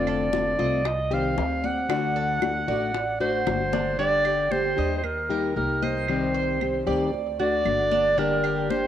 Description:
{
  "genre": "latin, Cuban son and guajira",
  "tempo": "115 BPM",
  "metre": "4/4",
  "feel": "straight",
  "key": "G minor",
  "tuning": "A4 = 442 Hz",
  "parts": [
    { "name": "bright clarinet", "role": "melody", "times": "0.0-8.9 s", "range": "Bb4 to F#5", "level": "-25 LUFS", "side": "right 1 dB", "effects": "cassette tape" },
    { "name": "nylon-string guitar", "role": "accompaniment", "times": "0.0-8.9 s", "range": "C3 to G4", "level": "-27 LUFS", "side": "left 5 dB", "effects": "none" },
    { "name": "Cuban tres", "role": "arpeggios", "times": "0.0-8.9 s", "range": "D4 to Eb5", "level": "-30 LUFS", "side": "right 7 dB", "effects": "tape echo" },
    { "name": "upright bass", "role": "bass", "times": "0.0-8.9 s", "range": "F1 to Eb2", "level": "-33 LUFS", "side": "right 1 dB", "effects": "none" },
    { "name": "claves", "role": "percussion", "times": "0.1-8.7 s", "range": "none", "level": "-39 LUFS", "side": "right 13 dB", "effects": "none" },
    { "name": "congas", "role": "percussion", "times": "0.1-8.9 s", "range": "none", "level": "-36 LUFS", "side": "left 9 dB", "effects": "none" },
    { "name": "bongos", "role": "percussion", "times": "0.3-3.9 s", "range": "none", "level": "-33 LUFS", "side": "left 10 dB", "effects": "none" }
  ],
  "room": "wet spring reverb, RT60 1.8 s, studio reverb",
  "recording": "home recording on cassette",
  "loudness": "-22 LUFS",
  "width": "side -10 dB against mid",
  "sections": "0.0-4.0 A section; 4.0-8.9 A section",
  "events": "drum fill 3.5-4.0",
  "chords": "0.0 F6; 0.9 Cm; 1.9 D; 4.0 G5; 5.0 Eb; 6.1 Cm; 7.1 D; 8.2 Gm",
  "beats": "0.33 0.85 1.38 | 1.90 2.42 2.95 3.47 | 4.00 4.52 5.04 5.56 | 6.09 6.61 7.13 7.66 | 8.18 8.70"
}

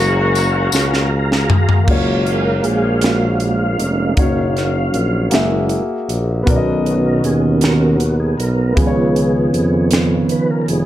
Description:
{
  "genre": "slow gospel",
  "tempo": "52 BPM (dotted quarters)",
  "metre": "6/8",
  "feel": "straight",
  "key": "F# major",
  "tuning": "A4 = 439 Hz",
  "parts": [
    { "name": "clear horn section", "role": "melody", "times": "0.0-1.1 s", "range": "A#3 to F#4", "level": "-19 LUFS", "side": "left 2 dB", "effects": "none" },
    { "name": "dark concert grand piano", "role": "accompaniment", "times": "0.0-10.9 s", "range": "B2 to E#5", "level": "-21 LUFS", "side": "left 2 dB", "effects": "none" },
    { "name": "mellow tonewheel organ", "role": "sustained chords", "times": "0.0-10.9 s", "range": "D#3 to A#5", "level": "-18 LUFS", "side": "right 2 dB", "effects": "slow rotary speaker, chorus vibrato" },
    { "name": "mellow tuba", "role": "bass", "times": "0.0-10.9 s", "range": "E#1 to E#2", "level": "-18 LUFS", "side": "equal", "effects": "none" },
    { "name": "crisp fusion drum kit", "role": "drums", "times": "0.4-10.9 s", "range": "crash cymbal, hi-hat, kick drum, snare drum, toms", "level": "-19 LUFS", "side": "equal", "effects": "none" },
    { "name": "tambourine", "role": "percussion", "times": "0.4-1.1 s", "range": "none", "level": "-24 LUFS", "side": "left 7 dB", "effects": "none" }
  ],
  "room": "moderate large studio reverb, RT60 0.9 s, small room reverb",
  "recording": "none",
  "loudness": "-13 LUFS",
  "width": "side -13 dB against mid",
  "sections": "0.0-1.9 A section; 1.9-10.9 B section",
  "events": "drum fill 0.7-1.9; tonewheel organ solo 1.9-10.9",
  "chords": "0.0 F#maj9; 1.9 F#maj7; 4.2 D#m7/F#; 5.3 F#9; 6.5 Bmaj7; 8.8 C#7",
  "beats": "0.73 | 1.88 3.03 | 4.18 5.32 | 6.47 7.62 | 8.77 9.92"
}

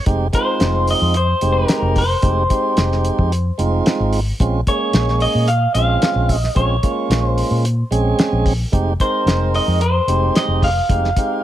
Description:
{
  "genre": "straight-eighth soul blues",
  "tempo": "111 BPM",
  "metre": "4/4",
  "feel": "straight",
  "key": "F minor",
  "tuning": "A4 = 440 Hz",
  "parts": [
    { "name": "tonewheel organ", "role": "accompaniment", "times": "0.0-11.4 s", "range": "Ab3 to Bb4", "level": "-21 LUFS", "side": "right 4 dB", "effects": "overdrive, stopped rotary speaker" },
    { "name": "vintage muted fingered electric bass", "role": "bass", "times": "0.1-11.1 s", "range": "F1 to Bb2", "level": "-18 LUFS", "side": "equal", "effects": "none" },
    { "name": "cloth-damped thuddy drum kit", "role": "drums", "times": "0.1-11.3 s", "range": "hi-hat, kick drum, snare drum", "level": "-19 LUFS", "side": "equal", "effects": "none" },
    { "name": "electric guitar through a small old amp", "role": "melody", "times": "0.3-11.4 s", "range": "Bb4 to F5", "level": "-20 LUFS", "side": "left 1 dB", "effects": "spring reverb" }
  ],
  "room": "light reverb",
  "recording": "none",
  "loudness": "-14 LUFS",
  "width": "side -12 dB against mid",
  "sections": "0.0-11.4 A section",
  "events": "none",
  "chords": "0.1 Fm9; 4.4 Bbm9; 8.7 Fm9",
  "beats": "| 0.07 0.61 1.15 1.69 | 2.23 2.77 3.32 3.86 | 4.40 4.94 5.48 6.02 | 6.56 7.10 7.64 8.19 | 8.73 9.27 9.81 10.35 | 10.89 11.43"
}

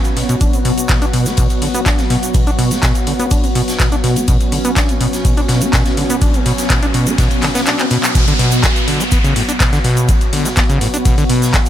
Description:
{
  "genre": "acid house",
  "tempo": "124 BPM",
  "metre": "4/4",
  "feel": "straight",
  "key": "B minor",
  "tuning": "A4 = 440 Hz",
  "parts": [
    { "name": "warm analog pad", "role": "sustained chords", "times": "0.0-11.7 s", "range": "F#3 to F#4", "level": "-23 LUFS", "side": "left 2 dB", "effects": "chorus, sidechain pumping" },
    { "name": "egg shaker", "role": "percussion", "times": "0.0-11.7 s", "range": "none", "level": "-27 LUFS", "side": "right 2 dB", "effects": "none" },
    { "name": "granular cloud pad", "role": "texture", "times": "0.0-11.7 s", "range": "B3 to B5", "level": "-22 LUFS", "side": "right 1 dB", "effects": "built-in reverb, sidechain pumping" },
    { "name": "booming analog drum machine", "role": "drums", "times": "0.1-11.7 s", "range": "handclaps, hi-hat", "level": "-21 LUFS", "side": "left 1 dB", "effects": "none" },
    { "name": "acid bass, saw", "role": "riff", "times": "0.2-11.6 s", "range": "A2 to D4", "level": "-18 LUFS", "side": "equal", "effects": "cassette tape, dub echo" },
    { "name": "raw garage drum kit", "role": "drums", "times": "0.2-11.7 s", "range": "hi-hat, snare drum", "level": "-27 LUFS", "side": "left 1 dB", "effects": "sidechain pumping on hats, high-pass filter on hats, high-pass filter on snare, high-pass filter on room" },
    { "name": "electronic kick drum", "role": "drums", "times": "0.4-11.6 s", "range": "none", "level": "-16 LUFS", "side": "equal", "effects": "none" },
    { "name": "riser and downlifter", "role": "sound effects", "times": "5.9-11.7 s", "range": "none", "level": "-24 LUFS", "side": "equal", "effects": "none" }
  ],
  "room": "little or no reverb",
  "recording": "echo-heavy mix",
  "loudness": "-12 LUFS",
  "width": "side -11 dB against mid",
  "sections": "0.0-8.2 A section; 8.2-11.7 B section",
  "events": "filter sweep on acid bass 0.0-8.2; riser 5.9-8.2; kick drops out 7.7-8.2; drum fill 7.8-8.2; band accent 8.0; drop 8.2-11.7",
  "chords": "0.0 B5",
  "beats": "| 0.41 0.89 1.38 1.86 | 2.35 2.83 3.31 3.80 | 4.28 4.76 5.25 5.73 | 6.22 6.70 7.18 7.67 | 8.15 8.63 9.12 9.60 | 10.09 10.57 11.05 11.54"
}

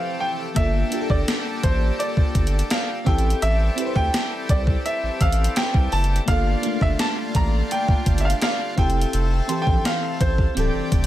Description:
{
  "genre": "contemporary R&B",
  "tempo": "84 BPM",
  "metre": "4/4",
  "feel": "straight",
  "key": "G dorian",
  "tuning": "A4 = 439 Hz",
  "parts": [
    { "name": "warm grand piano", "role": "melody", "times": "0.0-11.1 s", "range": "C5 to Bb5", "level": "-26 LUFS", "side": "equal", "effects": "ping-pong delay" },
    { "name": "FM electric piano with soft pad layer", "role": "accompaniment", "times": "0.0-11.1 s", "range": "E3 to C5", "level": "-28 LUFS", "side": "equal", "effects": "chorus" },
    { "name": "accordion", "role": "sustained chords", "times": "0.0-11.1 s", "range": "C3 to A4", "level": "-31 LUFS", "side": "left 1 dB", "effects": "none" },
    { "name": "saturated sub bass", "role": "bass", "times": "0.6-11.1 s", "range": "D1 to D2", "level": "-22 LUFS", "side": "equal", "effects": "none" },
    { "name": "gated 80s digital drum machine", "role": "drums", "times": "0.6-11.1 s", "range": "hi-hat, kick drum, snare drum", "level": "-22 LUFS", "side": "equal", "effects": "gated reverb, gated reverb snare" },
    { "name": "worn celesta", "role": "texture", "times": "0.9-10.6 s", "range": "G5 to E6", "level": "-38 LUFS", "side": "left 1 dB", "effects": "ping-pong delay" }
  ],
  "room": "little or no reverb",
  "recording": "none",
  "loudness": "-19 LUFS",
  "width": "side -13 dB against mid",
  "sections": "0.0-11.1 A section",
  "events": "none",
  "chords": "0.0 Fmaj7; 0.6 Gm9; 3.1 Am7; 6.3 Gm9; 8.8 Fmaj7; 10.6 D7sus4",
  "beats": "| 0.56 1.28 1.99 2.71 | 3.42 4.13 4.85 5.56 | 6.28 6.99 7.71 8.42 | 9.13 9.85 10.56"
}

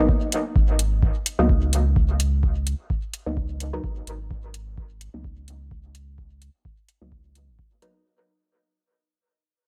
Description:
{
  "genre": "dub techno",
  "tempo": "128 BPM",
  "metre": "4/4",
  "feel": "swing 56% on 16ths",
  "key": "G# minor",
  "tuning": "A4 = 440 Hz",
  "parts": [
    { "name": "filtered dub chord stab", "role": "stabs", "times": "0.0-8.0 s", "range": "F#3 to D#4", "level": "-28 LUFS", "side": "equal", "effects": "chorus, phaser, sidechain pumping, dub echo" },
    { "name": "warm sub bass", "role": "bass", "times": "0.0-7.7 s", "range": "G#1 to C#2", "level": "-27 LUFS", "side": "equal", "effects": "tube saturation, sidechain pumping" },
    { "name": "electronic kick drum", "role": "drums", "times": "0.1-7.7 s", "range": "none", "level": "-25 LUFS", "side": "equal", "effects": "none" },
    { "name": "electronic hi-hat", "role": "drums", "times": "0.3-7.9 s", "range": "none", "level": "-30 LUFS", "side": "equal", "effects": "none" }
  ],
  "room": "light reverb, digital ambience",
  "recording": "echo-heavy mix",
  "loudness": "-23 LUFS",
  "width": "mono",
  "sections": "0.0-8.1 A section",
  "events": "fade-out 0.0-8.1",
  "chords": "0.0 G#m7",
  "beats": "0.09 | 0.56 1.02 1.49 1.96 | 2.43 2.90 3.37 3.84 | 4.31 4.78 5.24 5.71 | 6.18 6.65 7.12 7.59"
}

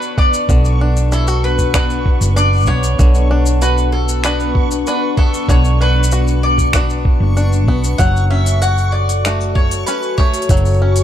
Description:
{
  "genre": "folktronica",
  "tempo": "96 BPM",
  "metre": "4/4",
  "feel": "straight",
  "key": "B minor",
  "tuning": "A4 = 441 Hz",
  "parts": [
    { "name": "mandolin", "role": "melody", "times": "0.0-11.0 s", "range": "A4 to F#5", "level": "-20 LUFS", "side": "left 1 dB", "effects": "none" },
    { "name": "warbly tape-like pad", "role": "sustained chords", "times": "0.0-11.0 s", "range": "B3 to F#5", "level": "-23 LUFS", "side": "left 3 dB", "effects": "chorus, built-in reverb" },
    { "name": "bluegrass banjo", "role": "arpeggios", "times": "0.0-11.0 s", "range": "D3 to F#4", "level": "-24 LUFS", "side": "left 1 dB", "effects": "ping-pong delay" },
    { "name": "minimal click drum kit", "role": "drums", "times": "0.0-11.0 s", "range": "finger snaps, hi-hat, shaker", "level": "-24 LUFS", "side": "left 2 dB", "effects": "overdrive" },
    { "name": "backwards swelling texture", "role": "texture", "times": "0.0-11.0 s", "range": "C#6", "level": "-32 LUFS", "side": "right 1 dB", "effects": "built-in reverb" },
    { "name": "electronic kick drum", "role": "drums", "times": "0.2-10.6 s", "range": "none", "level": "-14 LUFS", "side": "equal", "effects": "none" },
    { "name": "hollow-body short-scale fingered electric bass", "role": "bass", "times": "0.5-11.0 s", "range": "F#1 to B1", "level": "-14 LUFS", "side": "equal", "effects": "none" }
  ],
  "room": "little or no reverb",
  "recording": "dark, warm production",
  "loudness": "-12 LUFS",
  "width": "side -10 dB against mid",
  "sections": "0.0-11.0 A section",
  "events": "none",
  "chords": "0.0 Bm; 8.0 F#m",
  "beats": "| 0.49 1.12 1.74 2.37 | 2.99 3.62 4.24 4.87 | 5.49 6.12 6.74 7.37 | 7.99 8.62 9.24 9.87 | 10.49"
}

